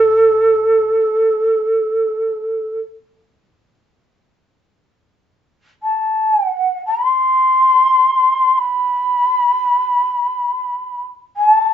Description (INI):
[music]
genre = japanese traditional, Japanese chamber music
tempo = free time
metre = none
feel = none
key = A minor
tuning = A4 = 438 Hz
[part]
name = mellow hollow shakuhachi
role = melody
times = 0.0-11.7 s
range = A4 to C6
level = -13 LUFS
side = equal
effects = none
[part]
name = koto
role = accompaniment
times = 0.0-0.9 s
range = A2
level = -48 LUFS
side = left 2 dB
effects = none
[sound]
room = wet studio reverb, RT60 0.6 s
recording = heard from further back in the room, nothing above 7.8 kHz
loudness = -13 LUFS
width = side -9 dB against mid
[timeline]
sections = 0.0-4.4 A section; 4.4-11.7 A section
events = none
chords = none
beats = free time